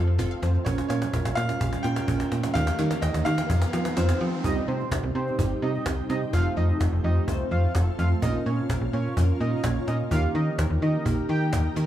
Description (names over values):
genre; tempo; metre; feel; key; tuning
dance-pop; 127 BPM; 4/4; straight; Bb dorian; A4 = 440 Hz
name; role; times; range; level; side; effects
clear concert grand piano; melody; 0.0-4.2 s; C5 to G5; -32 LUFS; left 1 dB; none
glassy wavetable pluck; accompaniment; 0.0-11.9 s; G3 to Db5; -31 LUFS; right 2 dB; chorus
shimmering ambient pad; sustained chords; 0.0-11.9 s; C3 to Bb4; -35 LUFS; equal; chorus, built-in reverb
wide unison pluck; arpeggios; 0.0-4.3 s; F3 to G5; -38 LUFS; left 1 dB; phaser, digital delay
slap-like FM bass; bass; 0.0-11.9 s; F1 to F3; -24 LUFS; equal; none
riser; sound effects; 0.1-4.4 s; none; -36 LUFS; right 2 dB; none
cajon; drums; 0.1-11.9 s; none; -32 LUFS; equal; none
fat analog lead; melody; 4.4-11.6 s; C5 to G5; -32 LUFS; right 2 dB; digital delay
room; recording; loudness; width
little or no reverb; none; -22 LUFS; side -12 dB against mid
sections
0.0-4.4 A section; 4.4-11.9 B section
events
build-up 0.0-4.4; drum fill 0.0-4.4; riser 0.1-4.4; drop 4.4-11.9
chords
0.0 F; 0.7 Bbm; 2.6 Eb; 3.5 F; 4.4 Cm; 6.3 F; 8.2 Bbm; 10.1 Eb